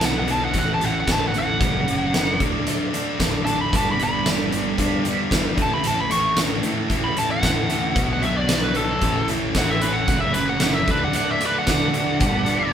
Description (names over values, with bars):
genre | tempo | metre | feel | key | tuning
classic rock | 113 BPM | 4/4 | straight | unclear | A4 = 440 Hz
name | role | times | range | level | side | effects
biting lead guitar | melody | 0.0-12.7 s | A4 to C#6 | -23 LUFS | equal | overdrive
distorted electric guitar | riff | 0.0-12.7 s | F#2 to D4 | -26 LUFS | right 5 dB | distortion
sludgy distorted guitar | riff | 0.0-12.7 s | F#2 to F#4 | -26 LUFS | left 6 dB | overdrive
fingered electric bass | bass | 0.0-12.7 s | F#1 to D3 | -29 LUFS | equal | none
huge arena drum kit | drums | 0.0-12.6 s | hi-hat, kick drum, snare drum, tambourine | -23 LUFS | equal | none
tonewheel organ | sustained chords | 8.0-12.7 s | A3 to D5 | -35 LUFS | left 1 dB | none
room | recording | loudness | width
moderate large studio reverb, RT60 0.9 s | band playing live in one room | -18 LUFS | side -9 dB against mid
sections
0.0-12.7 A section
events
lead electric guitar solo 0.0-12.7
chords
0.0 Bm; 0.6 A; 1.6 F#m; 2.4 D; 3.7 G; 5.6 A; 8.0 Bmadd9; 9.0 A; 10.1 F#m; 10.9 D; 12.2 G